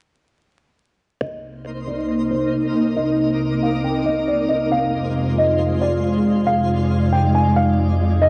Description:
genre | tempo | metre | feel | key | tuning
hip hop | 137 BPM | 4/4 | half-time | C minor | A4 = 440 Hz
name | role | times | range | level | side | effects
felt-muted upright piano | melody | 1.2-8.3 s | C5 to Ab5 | -24 LUFS | equal | low-pass filter, cassette tape, tape echo
glassy FM pad | sustained chords | 1.7-8.3 s | C2 to F4 | -21 LUFS | equal | ensemble chorus, built-in reverb, low-pass filter, cassette tape
twinkling granular texture | texture | 1.7-8.3 s | Ab3 to D6 | -29 LUFS | equal | built-in reverb, cassette tape
room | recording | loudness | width
light reverb, small room ambience | home recording on cassette, vinyl crackle, nothing above 10.8 kHz | -19 LUFS | mono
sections
1.2-8.3 A section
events
none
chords
1.2 Cm7; 4.7 Fm

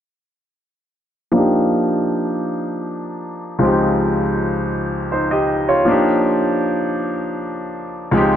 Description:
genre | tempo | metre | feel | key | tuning
R&B | 53 BPM (dotted quarters) | 6/8 | straight | Eb major | A4 = 439 Hz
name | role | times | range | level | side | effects
clear grand piano | solo | 1.3-8.4 s | Db2 to Eb5 | -16 LUFS | equal | low-pass filter
room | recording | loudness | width
light reverb, small room ambience | none | -16 LUFS | side -10 dB against mid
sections
1.3-8.4 A section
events
filter sweep on grand piano 1.3-8.4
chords
1.3 Ebmaj9; 3.6 Dbmaj9#11; 5.9 Ebmaj9

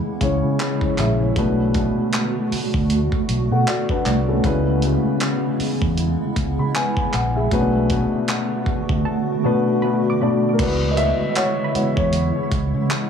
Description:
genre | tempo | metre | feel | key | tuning
contemporary R&B | 78 BPM | 4/4 | swing 58% on 16ths | C# phrygian | A4 = 440 Hz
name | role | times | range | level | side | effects
dark concert grand piano | accompaniment | 0.0-13.1 s | B2 to B5 | -21 LUFS | left 2 dB | dub echo
granular cloud pad | sustained chords | 0.0-13.1 s | C#3 to F#4 | -25 LUFS | right 3 dB | built-in reverb
soft round pluck | texture | 0.0-1.7, 9.1-13.1 s | F#5 to D6 | -34 LUFS | right 2 dB | chorus, dub echo
fingered electric bass | bass | 0.2-12.9 s | A#1 to C#3 | -22 LUFS | equal | none
dusty soul sampler-style drum kit | drums | 0.2-13.1 s | crash cymbal, handclaps, hi-hat, kick drum | -25 LUFS | equal | none
room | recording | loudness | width
light reverb | echo-heavy mix, small room ambience | -18 LUFS | side -7 dB against mid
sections
0.0-10.6 A section; 10.6-13.1 B section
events
grand piano solo 10.6-13.1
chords
0.0 C#m7; 1.4 Bm7; 4.4 C#m7; 7.5 Bm7; 10.6 C#m7

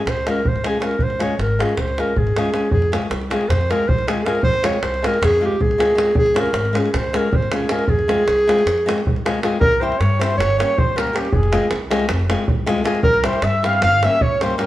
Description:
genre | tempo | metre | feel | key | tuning
balkan folk, Balkan wedding band | 314 BPM (eighths) | 9/8 | straight | F harmonic minor | A4 = 442 Hz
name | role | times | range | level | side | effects
mellow clarinet | melody | 0.0-14.7 s | G4 to F5 | -19 LUFS | equal | none
upright bass | bass | 0.1-14.5 s | F1 to G2 | -23 LUFS | equal | none
davul | percussion | 0.1-14.7 s | none | -22 LUFS | right 1 dB | none
flamenco guitar | accompaniment | 0.3-14.7 s | G3 to Ab4 | -23 LUFS | left 2 dB | none
mellow trumpet | second line | 9.6-14.7 s | G4 to F5 | -24 LUFS | equal | none
room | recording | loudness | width
moderate stone room reverb, RT60 1.0 s | band playing live in one room | -16 LUFS | side -14 dB against mid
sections
0.0-9.6 A section; 9.6-14.7 B section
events
none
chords
0.0 Db; 2.7 Fm; 6.2 Db; 7.9 Fm; 9.6 C; 10.4 Gdim; 11.3 Fm; 13.0 C; 13.8 Gdim

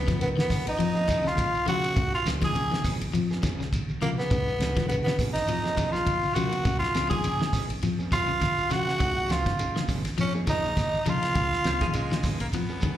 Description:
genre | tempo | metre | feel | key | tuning
afrobeat | 102 BPM | 4/4 | swing 56% on 16ths | Db mixolydian | A4 = 440 Hz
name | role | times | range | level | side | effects
growling tenor saxophone | melody | 0.0-12.3 s | Bb3 to Ab4 | -28 LUFS | equal | slapback echo
breathy alto saxophone | second line | 0.0-12.3 s | Bb4 to Ab5 | -36 LUFS | right 4 dB | slapback echo
mellow electric guitar | stabs | 0.0-13.0 s | F3 to Ab4 | -38 LUFS | right 6 dB | slapback echo
fingered electric bass | bass | 0.0-13.0 s | Ab1 to Db3 | -32 LUFS | equal | none
electric guitar at the edge of break-up | arpeggios | 0.1-12.9 s | Db3 to F3 | -33 LUFS | left 6 dB | spring reverb, slapback echo
damped 70s drum kit | drums | 0.1-13.0 s | hi-hat, kick drum, ride cymbal, snare drum | -31 LUFS | equal | none
congas | percussion | 0.1-13.0 s | none | -34 LUFS | right 1 dB | slapback echo
shekere | percussion | 0.1-13.0 s | none | -37 LUFS | right 1 dB | none
reed electric piano | accompaniment | 0.2-12.5 s | F3 to Bb4 | -39 LUFS | left 1 dB | fast tremolo, slapback echo
raspy baritone saxophone | second line | 11.7-13.0 s | F3 to Cb4 | -37 LUFS | left 2 dB | slapback echo
room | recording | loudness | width
light reverb | live gig heard through the venue's PA, club reverb | -24 LUFS | side -12 dB against mid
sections
0.0-13.0 A section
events
none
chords
0.0 Db7

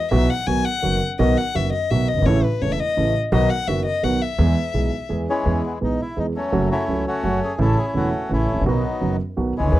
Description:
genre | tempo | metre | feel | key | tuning
tango | 169 BPM | 3/4 | rubato | E major | A4 = 442 Hz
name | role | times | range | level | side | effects
warm violin | second line | 0.0-5.1, 9.7-9.8 s | B4 to G#5 | -23 LUFS | left 5 dB | none
dark concert grand piano | accompaniment | 0.1-9.8 s | E1 to G#4 | -21 LUFS | right 2 dB | none
upright bass | bass | 0.1-9.8 s | E1 to E2 | -24 LUFS | equal | none
bandoneon | melody | 5.3-9.8 s | E3 to A4 | -24 LUFS | left 1 dB | none
room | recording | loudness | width
little or no reverb | dry, close 1970s-style studio recording | -18 LUFS | side -15 dB against mid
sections
0.0-5.5 A section; 5.5-9.8 B section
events
violin solo 0.0-5.5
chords
0.1 Bsus4; 0.5 B; 2.3 A; 3.3 B; 4.4 E; 6.5 F#m; 7.6 A; 8.7 B

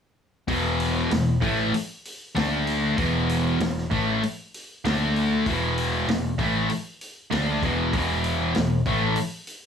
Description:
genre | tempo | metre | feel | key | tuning
blues rock power trio and southern rock | 97 BPM | 4/4 | straight | unclear | A4 = 441 Hz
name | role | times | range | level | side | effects
sludgy distorted guitar | riff | 0.5-9.2 s | E2 to D4 | -23 LUFS | left 1 dB | overdrive
vintage muted picked electric bass | bass | 0.5-9.2 s | E1 to D2 | -29 LUFS | left 1 dB | none
vintage drum kit | drums | 0.5-9.6 s | hi-hat, kick drum, snare drum | -31 LUFS | equal | none
room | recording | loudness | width
light reverb | none | -22 LUFS | side -7 dB against mid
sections
0.5-9.7 A section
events
none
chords
0.5 E5; 2.4 D5; 3.0 E5; 4.8 D5; 5.5 E5

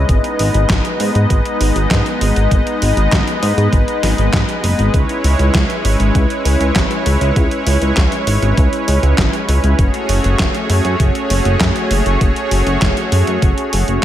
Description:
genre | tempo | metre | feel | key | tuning
synthwave | 99 BPM | 4/4 | straight | C# minor | A4 = 438 Hz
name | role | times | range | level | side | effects
warm analog pad | sustained chords | 0.0-14.0 s | G#3 to D#5 | -18 LUFS | equal | chorus
chorused synth bass | bass | 0.0-14.0 s | F#1 to G#2 | -15 LUFS | equal | none
detuned 8-bit digital drum machine | drums | 0.1-14.0 s | handclaps, hi-hat, snare drum | -20 LUFS | equal | gated reverb
electronic kick drum | drums | 0.1-13.5 s | none | -16 LUFS | equal | none
room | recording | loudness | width
digital ambience | none | -12 LUFS | side -12 dB against mid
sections
0.0-14.0 A section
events
none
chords
0.1 G#m; 4.9 C#m7; 9.8 F#madd9

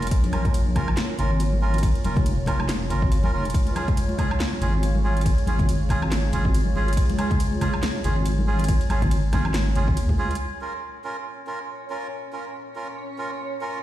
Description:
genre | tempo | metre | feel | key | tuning
deep dubstep | 140 BPM | 4/4 | swing 57% on 16ths, half-time | Bb minor | A4 = 440 Hz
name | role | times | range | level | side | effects
dark analog pad | sustained chords | 0.0-13.8 s | Ab3 to Db5 | -33 LUFS | right 1 dB | chorus
melodica | stabs | 0.0-13.8 s | Db4 to Bb4 | -30 LUFS | right 3 dB | dub echo
deep soft wobble bass | bass | 0.0-10.4 s | F1 to Eb2 | -23 LUFS | equal | chorus
deep house drum kit | drums | 0.0-10.4 s | handclaps, hi-hat, ride cymbal, snare drum, woodblock | -32 LUFS | equal | overdrive, low-pass filter on hats, low-pass filter on cymbals, low-pass filter on perc, low-pass filter on snare, low-pass filter on room
electronic kick drum | drums | 0.1-10.2 s | none | -23 LUFS | equal | overdrive
congas | percussion | 0.2-10.2 s | none | -30 LUFS | left 2 dB | dub echo
backwards swelling texture | texture | 11.2-13.8 s | Db4 to Db5 | -36 LUFS | right 1 dB | built-in reverb
room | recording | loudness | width
light reverb, digital ambience | played on a big sound system in a bare room, stone room reverb | -21 LUFS | side -13 dB against mid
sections
0.0-10.4 A section; 10.4-13.8 B section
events
drop 0.0-10.4; filter sweep on analog synth pad 10.4-13.8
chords
0.0 Bbm; 3.5 Db; 10.4 Bbm

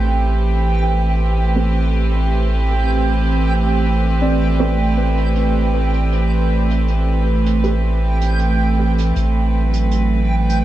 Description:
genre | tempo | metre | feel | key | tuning
ambient dub | 79 BPM | 4/4 | straight | A minor | A4 = 441 Hz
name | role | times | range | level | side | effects
warm studio string section | sustained chords | 0.0-10.6 s | E3 to B4 | -21 LUFS | right 3 dB | none
soft synth bell | arpeggios | 0.0-10.6 s | A3 to D5 | -27 LUFS | left 2 dB | chorus, phaser, low-pass filter, dub echo
warm sub bass | bass | 0.0-10.6 s | A1 | -16 LUFS | equal | tube saturation
hi-hat | drums | 0.0-10.6 s | none | -36 LUFS | right 6 dB | low-pass filter on hats, low-pass filter on snare, low-pass filter on room
backwards swelling texture | texture | 0.0-10.6 s | G5 | -27 LUFS | right 3 dB | built-in reverb
filtered dub chord stab | stabs | 1.6-7.9 s | C4 to B4 | -29 LUFS | right 3 dB | none
room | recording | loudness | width
little or no reverb | echo-heavy mix, small room ambience | -15 LUFS | side -14 dB against mid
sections
0.0-10.6 A section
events
filter sweep on drum 0.0-10.6; filter sweep on synth bell 0.0-10.6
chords
0.0 Am9

